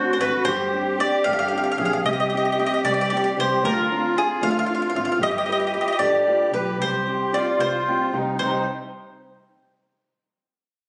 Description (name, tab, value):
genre	italian folk, Italian serenade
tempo	76 BPM (dotted quarters)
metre	6/8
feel	straight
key	C minor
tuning	A4 = 440 Hz
part	mandolin	melody	0.0-8.7 s	Ab4 to F5	-25 LUFS	equal	none
part	musette accordion	second line	0.0-8.7 s	Eb4 to Ab4	-28 LUFS	equal	none
part	nylon-string guitar	accompaniment	0.0-8.7 s	C3 to B4	-30 LUFS	equal	none
part	warm double bass	bass	0.2-8.7 s	G1 to D2	-34 LUFS	equal	none
room	moderate recital hall reverb, RT60 1.5 s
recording	recorded on a phone in the room, studio reverb, nothing above 10.9 kHz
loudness	-22 LUFS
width	mono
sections	0.0-8.4 A section; 8.4-10.0 B section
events	none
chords	0.5 Gsus4; 2.1 Cm; 3.6 Dm7; 5.2 G7; 6.8 Cm